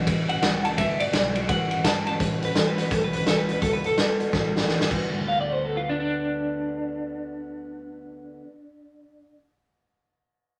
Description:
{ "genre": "rockabilly", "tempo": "169 BPM", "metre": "4/4", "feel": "swing 62% on 8ths", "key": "D major", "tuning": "A4 = 440 Hz", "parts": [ { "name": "picked steel-string acoustic guitar", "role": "accompaniment", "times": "0.0-8.5 s", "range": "A2 to F#4", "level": "-33 LUFS", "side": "equal", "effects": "none" }, { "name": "upright bass", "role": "bass", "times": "0.0-8.4 s", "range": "G1 to D2", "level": "-39 LUFS", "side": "equal", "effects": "none" }, { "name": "raw garage drum kit", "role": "drums", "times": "0.1-5.0 s", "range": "crash cymbal, hi-hat, kick drum, ride cymbal, snare drum", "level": "-27 LUFS", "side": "equal", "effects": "none" }, { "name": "electric guitar through a small old amp", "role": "melody", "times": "0.3-9.4 s", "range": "D4 to A5", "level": "-30 LUFS", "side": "equal", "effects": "tremolo" } ], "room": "moderate studio reverb, RT60 0.5 s", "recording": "none", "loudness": "-25 LUFS", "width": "mono", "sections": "0.0-2.2 A section; 2.2-5.0 B section; 5.0-7.9 C section", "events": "drum fill 4.3-5.0", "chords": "0.0 A6; 0.8 D6; 1.5 A6; 3.6 D6; 4.3 A6; 4.9 D6" }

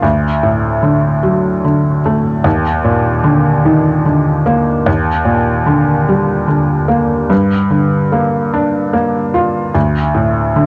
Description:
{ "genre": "folk", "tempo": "50 BPM (dotted quarters)", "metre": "6/8", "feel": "straight", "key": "G minor", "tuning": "A4 = 442 Hz", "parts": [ { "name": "felt-muted upright piano", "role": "solo", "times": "0.0-10.7 s", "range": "D2 to F4", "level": "-13 LUFS", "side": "equal", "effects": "cassette tape" } ], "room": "light reverb", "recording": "home recording on cassette", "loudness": "-13 LUFS", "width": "mono", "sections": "0.0-10.7 A section", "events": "none", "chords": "0.0 D; 2.5 Bbadd11/Eb; 4.9 Ebmaj7; 7.3 Gm7; 9.8 D5" }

